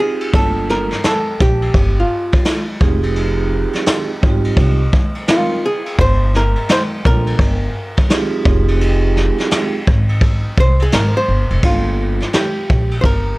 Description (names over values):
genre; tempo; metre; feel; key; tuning
hip hop, jazz-hop; 85 BPM; 4/4; swing 64% on 16ths; G phrygian; A4 = 440 Hz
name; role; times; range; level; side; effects
archtop guitar, miked and amplified; melody; 0.0-13.4 s; F4 to C5; -19 LUFS; equal; analog delay
vibraphone with medium hard mallets; accompaniment; 0.0-12.2 s; G3 to Bb4; -21 LUFS; right 4 dB; none
vintage brush drum kit; drums; 0.2-13.3 s; crash cymbal, hi-hat, kick drum, ride cymbal, snare drum; -16 LUFS; equal; none
upright bass; bass; 0.3-13.3 s; F1 to C2; -17 LUFS; equal; none
room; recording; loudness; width
little or no reverb; dark, warm production; -13 LUFS; side -21 dB against mid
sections
0.0-11.6 A section; 11.6-13.4 B section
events
hollow-body jazz guitar solo 0.0-11.6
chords
0.3 Gm9; 2.8 Fm9; 6.0 Gm7; 8.5 Fm9; 11.6 Gm9